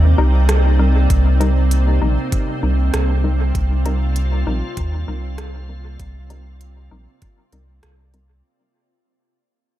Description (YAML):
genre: ambient dub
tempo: 98 BPM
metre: 4/4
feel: swing 59% on 16ths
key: C minor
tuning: A4 = 440 Hz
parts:
  - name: soft additive organ-like pad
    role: sustained chords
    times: 0.0-8.4 s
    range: C3 to D5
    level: -25 LUFS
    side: right 2 dB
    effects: ensemble chorus, built-in reverb
  - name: warm sub bass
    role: bass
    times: 0.0-8.4 s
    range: Bb1 to Eb2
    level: -16 LUFS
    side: equal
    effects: none
  - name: filtered dub chord stab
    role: stabs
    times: 0.2-8.4 s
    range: G3 to Bb4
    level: -26 LUFS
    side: left 3 dB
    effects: chorus, dub echo
  - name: organic electronic drum kit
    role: drums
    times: 0.5-8.3 s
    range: hi-hat, rim click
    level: -27 LUFS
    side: equal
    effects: overdrive, dub echo
  - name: electronic kick drum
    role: drums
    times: 1.1-7.4 s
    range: none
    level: -22 LUFS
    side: equal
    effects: none
room: digital ambience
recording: none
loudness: -15 LUFS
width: side -14 dB against mid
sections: 0.0-8.4 A section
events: fade-out 0.0-8.4; filter sweep on synth stab 0.0-8.4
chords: 0.0 Cm7